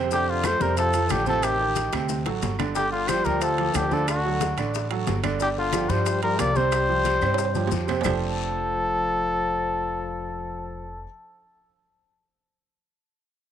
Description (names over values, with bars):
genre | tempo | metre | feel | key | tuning
Afro-Cuban jazz | 181 BPM | 4/4 | straight | F major | A4 = 439 Hz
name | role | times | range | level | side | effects
warm baby grand piano | accompaniment | 0.0-11.0 s | C3 to D5 | -29 LUFS | right 8 dB | none
upright bass | bass | 0.0-11.0 s | F1 to G2 | -29 LUFS | equal | none
trumpet with cup mute | melody | 0.1-11.0 s | F4 to D5 | -26 LUFS | equal | none
trombone with cup mute | second line | 0.1-11.0 s | D3 to Bb3 | -31 LUFS | left 8 dB | none
bongos | percussion | 0.1-8.1 s | none | -36 LUFS | left 13 dB | none
congas | percussion | 0.1-8.1 s | none | -33 LUFS | left 8 dB | none
guiro | percussion | 0.1-8.1 s | none | -40 LUFS | left 11 dB | none
maracas | percussion | 0.1-8.1 s | none | -38 LUFS | left 13 dB | none
claves | percussion | 0.4-8.1 s | none | -38 LUFS | right 9 dB | none
timbales | percussion | 0.4-8.1 s | none | -33 LUFS | right 9 dB | none
room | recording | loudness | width
wet spring reverb, RT60 2.1 s | 1960s-style stereo with parts hard left and right | -22 LUFS | side -9 dB against mid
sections
0.0-2.8 A section; 2.8-8.1 B section; 8.1-10.7 C section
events
drum fill 1.9-2.8, 7.2-8.1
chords
0.1 F; 1.4 Am7b5; 2.1 D7; 2.8 G5; 4.1 D; 5.4 G5; 6.7 Csus4; 8.1 F6